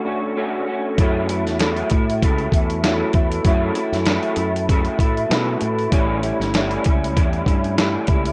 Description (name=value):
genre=indie pop, bedroom pop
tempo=97 BPM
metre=4/4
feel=swing 55% on 16ths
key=F# minor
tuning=A4 = 440 Hz
part: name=electric guitar through a small old amp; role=accompaniment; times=0.0-8.3 s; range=F#2 to F#4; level=-25 LUFS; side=equal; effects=ensemble chorus, vibrato effect
part: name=tine electric piano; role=accompaniment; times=0.0-8.3 s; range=A3 to E5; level=-27 LUFS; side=equal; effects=none
part: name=fingered electric bass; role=bass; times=1.0-8.3 s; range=G1 to B2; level=-27 LUFS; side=equal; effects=none
part: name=dusty soul sampler-style drum kit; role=drums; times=1.0-8.3 s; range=hi-hat, kick drum, snare drum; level=-22 LUFS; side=equal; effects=none
room=moderate studio reverb, RT60 0.7 s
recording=worn, warbling old tape, cassette tape, warbly pitch drift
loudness=-20 LUFS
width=mono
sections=1.0-8.3 A section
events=break 0.0-1.0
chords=0.0 Dmaj7; 1.0 F#m7; 5.9 A7